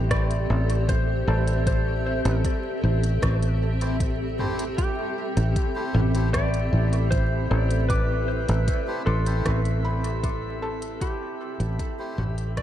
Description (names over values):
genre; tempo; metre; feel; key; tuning
ambient dub; 77 BPM; 4/4; straight; A minor; A4 = 440 Hz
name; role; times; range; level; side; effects
clean lap steel guitar; melody; 0.0-12.6 s; G4 to D5; -32 LUFS; left 1 dB; wide subtle chorus, ping-pong delay
granular cloud pad; sustained chords; 0.0-12.6 s; C4 to E5; -31 LUFS; equal; built-in reverb
felt-muted upright piano; arpeggios; 0.0-12.6 s; A4 to D6; -38 LUFS; equal; ping-pong delay
fingered electric bass; bass; 0.0-12.6 s; A1; -23 LUFS; equal; none
electronic kick drum; drums; 0.1-12.6 s; none; -26 LUFS; equal; none
organic electronic drum kit; drums; 0.1-12.6 s; hi-hat, rim click, toms; -35 LUFS; equal; dub echo
melodica; stabs; 3.8-12.2 s; A3 to C5; -38 LUFS; left 1 dB; dub echo
drifting glass-harmonics texture; texture; 5.5-12.6 s; E4 to E5; -38 LUFS; equal; chorus, built-in reverb
room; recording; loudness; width
light reverb, digital ambience; vinyl crackle; -22 LUFS; side -11 dB against mid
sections
0.0-12.6 A section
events
fade-out 8.9-12.6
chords
0.0 Am7